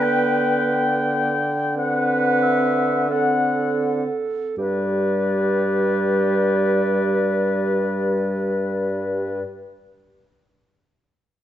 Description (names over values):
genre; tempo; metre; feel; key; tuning
classical, slow romantic movement for wind quintet; 38-56 BPM; 4/4; rubato; G major; A4 = 436 Hz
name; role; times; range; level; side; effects
silver concert flute; melody; 0.0-9.4 s; D5 to G5; -27 LUFS; left 7 dB; none
mellow oboe; second line; 0.0-9.4 s; B4 to G5; -26 LUFS; left 3 dB; none
mellow clarinet; accompaniment; 0.0-9.4 s; G4 to B4; -24 LUFS; right 4 dB; none
warm French horn; accompaniment; 0.0-9.4 s; G3 to C4; -27 LUFS; equal; none
dark bassoon; bass; 0.0-9.4 s; G2 to D3; -24 LUFS; equal; none
room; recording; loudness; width
wet recital hall reverb, RT60 1.7 s; dark, warm production, nothing above 8.0 kHz; -18 LUFS; side -11 dB against mid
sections
0.0-4.6 A section; 4.6-10.3 B section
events
slowing down 0.0-4.6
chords
0.0 G/D; 1.8 D7; 4.6 G